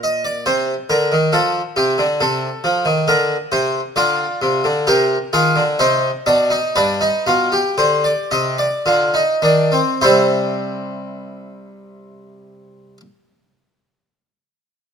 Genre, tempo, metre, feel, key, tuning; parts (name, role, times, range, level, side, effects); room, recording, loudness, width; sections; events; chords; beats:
classical, baroque-style 3-part fugue for harpsichord; 50-69 BPM; 3/4; straight; A4 = 444 Hz
harpsichord; solo; 0.0-13.0 s; G2 to Eb5; -15 LUFS; equal
light reverb; close, detailed microphones; -14 LUFS; side -7 dB against mid
0.0-10.0 A section; 10.0-13.6 B section
slowing down 2.6-10.0
0.5 Cm; 1.3 F; 3.1 Bb/D; 4.0 Dm7b5; 5.8 Cmadd9; 6.8 G7; 10.0 C
0.47 | 1.34 2.21 3.08 | 3.97 4.87 5.80 | 6.76 7.78 8.86 | 10.01 11.20 12.40